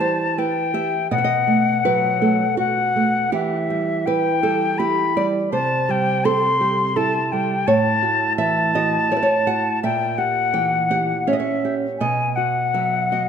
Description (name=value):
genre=romantic duo for flute and classical guitar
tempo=82 BPM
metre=3/4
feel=rubato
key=E minor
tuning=A4 = 439 Hz
part: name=silver concert flute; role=melody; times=0.0-13.3 s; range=E5 to C6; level=-20 LUFS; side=left 4 dB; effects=tape echo
part: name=nylon-string guitar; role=accompaniment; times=0.0-13.3 s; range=A2 to G5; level=-21 LUFS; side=right 3 dB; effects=none
room=moderate recital hall reverb, RT60 1.4 s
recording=dark, warm production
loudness=-17 LUFS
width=side -7 dB against mid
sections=0.0-13.3 A section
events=none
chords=0.0 Em; 1.1 B5; 3.3 Em; 5.5 C; 7.7 F#m7/A; 9.8 A#dim7; 12.0 B